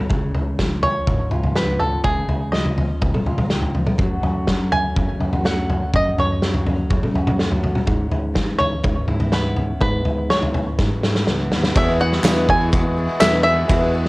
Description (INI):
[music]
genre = indie folk with a building arrangement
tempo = 124 BPM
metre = 4/4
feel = straight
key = unclear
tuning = A4 = 442 Hz
[part]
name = fingerpicked steel-string acoustic guitar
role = accompaniment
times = 0.0-13.7 s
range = F#2 to F#4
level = -26 LUFS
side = equal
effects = cassette tape
[part]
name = fingered electric bass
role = bass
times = 0.1-14.1 s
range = C#2 to G#2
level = -24 LUFS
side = equal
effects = none
[part]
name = loose indie drum kit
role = drums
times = 0.1-14.1 s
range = kick drum, ride cymbal, snare drum, toms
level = -20 LUFS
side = equal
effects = cassette tape
[part]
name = bluegrass banjo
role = melody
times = 0.8-14.1 s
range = G#4 to G#5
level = -22 LUFS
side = right 1 dB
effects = cassette tape, plate reverb, tape echo
[part]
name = bright upright piano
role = accompaniment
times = 11.8-14.1 s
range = E2 to E5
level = -30 LUFS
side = right 2 dB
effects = none
[part]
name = picked twelve-string acoustic guitar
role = accompaniment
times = 11.8-14.1 s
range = E2 to F#4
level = -24 LUFS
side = left 2 dB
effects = cassette tape
[part]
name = hand-pumped harmonium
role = sustained chords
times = 11.8-14.1 s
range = E3 to F#4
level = -26 LUFS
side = equal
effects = cassette tape, plate reverb
[part]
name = group handclap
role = percussion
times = 12.2-13.3 s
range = none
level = -25 LUFS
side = right 1 dB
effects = none
[part]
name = tambourine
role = percussion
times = 12.2-13.3 s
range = none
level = -32 LUFS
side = right 3 dB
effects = none
[sound]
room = moderate small room reverb, RT60 0.5 s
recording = home recording on cassette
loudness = -17 LUFS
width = side -22 dB against mid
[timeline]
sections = 0.0-11.8 A section; 11.8-14.1 B section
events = drum fill 10.8-11.8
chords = 0.1 C#; 4.0 F#m; 7.9 C#m7/G#; 11.8 Eadd9